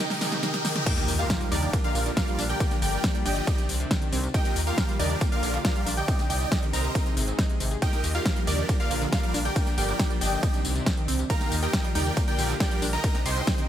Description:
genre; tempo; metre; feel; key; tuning
uplifting trance; 138 BPM; 4/4; straight; Eb major; A4 = 439 Hz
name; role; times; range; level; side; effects
supersaw chords; melody; 0.0-13.6 s; D4 to C6; -31 LUFS; right 1 dB; phaser, sidechain pumping, digital delay
lush unison pad; sustained chords; 0.0-13.6 s; C3 to Ab4; -35 LUFS; equal; chorus, sidechain pumping
analog pluck; arpeggios; 0.0-13.6 s; C3 to Ab4; -34 LUFS; right 2 dB; chorus, sidechain pumping, digital delay
riser and impact; sound effects; 0.0-2.6 s; none; -34 LUFS; equal; none
big-room dance drum kit; drums; 0.1-13.7 s; crash cymbal, hi-hat, ride cymbal, snare drum, tambourine, toms; -31 LUFS; left 1 dB; overdrive, studio reverb
gritty driven synth bass; bass; 0.2-13.4 s; G1 to Eb2; -29 LUFS; equal; sidechain pumping, high-pass filter
analog pluck; second line; 0.9-13.6 s; D5 to C6; -36 LUFS; equal; chorus, sidechain pumping, digital delay
electronic kick drum; drums; 0.9-13.6 s; none; -26 LUFS; equal; overdrive, studio reverb
room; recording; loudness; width
digital ambience; none; -23 LUFS; side -11 dB against mid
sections
0.9-13.7 A section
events
drum fill 0.0-0.9; riser 0.0-0.9; drop 0.9-13.7; impact 0.9-2.6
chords
0.0 Ab; 0.9 Ebadd9; 1.7 Bb6; 2.6 Gm7; 3.5 Cmadd9; 4.3 Ebadd9; 5.2 Bb6; 6.1 Cmadd9; 7.0 Ab; 7.8 Ebadd9; 8.7 Bb6; 9.6 Gm7; 10.4 Cmadd9; 11.3 Ebadd9; 12.2 Bb6; 13.0 Cmadd9

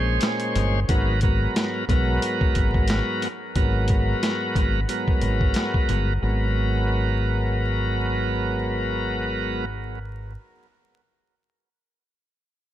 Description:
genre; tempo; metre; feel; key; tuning
hip hop, boom-bap hip-hop; 90 BPM; 4/4; swing 56% on 16ths; G# minor; A4 = 439 Hz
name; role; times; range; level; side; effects
bright tonewheel organ; accompaniment; 0.0-9.7 s; G#2 to B#4; -25 LUFS; equal; overdrive, slow rotary speaker, high-pass filter, low-pass filter, analog delay
deep dub fingered electric bass; bass; 0.0-10.4 s; G1 to B1; -24 LUFS; equal; none
boom bap sampler-style drum kit; drums; 0.2-6.1 s; hi-hat, kick drum, snare drum; -24 LUFS; equal; analog delay
room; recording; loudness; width
light reverb; echo-heavy mix, vinyl crackle; -20 LUFS; side -12 dB against mid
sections
0.9-6.2 A section; 6.2-8.9 B section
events
break 0.0-0.9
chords
0.0 A#m9; 0.9 G#m9

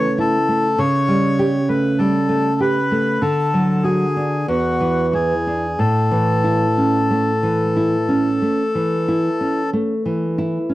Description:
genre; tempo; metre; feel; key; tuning
romantic duo for bandoneon and classical guitar; 45-50 BPM; 4/4; rubato; A major; A4 = 442 Hz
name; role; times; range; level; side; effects
bandoneon; melody; 0.0-9.7 s; F#4 to C#5; -21 LUFS; left 2 dB; none
nylon-string guitar; accompaniment; 0.0-10.7 s; E2 to G4; -17 LUFS; right 1 dB; none
room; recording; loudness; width
light reverb; dry, close 1970s-style studio recording; -16 LUFS; side -16 dB against mid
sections
0.0-10.7 A section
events
none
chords
0.0 A/C#; 0.8 A7/C#; 3.2 D; 4.5 E7; 5.8 A

